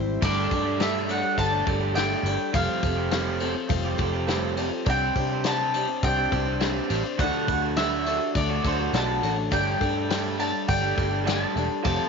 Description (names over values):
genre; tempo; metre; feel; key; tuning
folk rock and heartland rock; 103 BPM; 4/4; straight; unclear; A4 = 439 Hz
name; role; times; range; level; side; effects
picked steel-string acoustic guitar; accompaniment; 0.0-12.1 s; D3 to C5; -31 LUFS; left 12 dB; none
hand-pumped harmonium; sustained chords; 0.0-12.1 s; C4 to C6; -39 LUFS; right 3 dB; none
electric guitar through a small old amp; riff; 0.0-12.1 s; C3 to G4; -30 LUFS; right 16 dB; lush chorus
picked electric bass; bass; 0.0-12.0 s; E1 to C3; -29 LUFS; right 1 dB; none
mandolin; melody; 0.2-12.1 s; C5 to A5; -28 LUFS; equal; none
dark upright piano; accompaniment; 0.2-12.1 s; F#4 to A5; -37 LUFS; right 13 dB; none
soft brush drum kit; drums; 0.2-12.0 s; crash cymbal, kick drum, snare drum; -29 LUFS; left 4 dB; none
room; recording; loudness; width
light reverb, studio reverb; 1960s-style stereo with parts hard left and right, nothing above 7.5 kHz; -22 LUFS; side -5 dB against mid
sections
0.2-12.1 A section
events
upright piano fill 3.7-4.9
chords
0.2 Gsus2; 2.5 Fadd9; 4.9 Csus2; 7.2 D; 9.5 Gsus2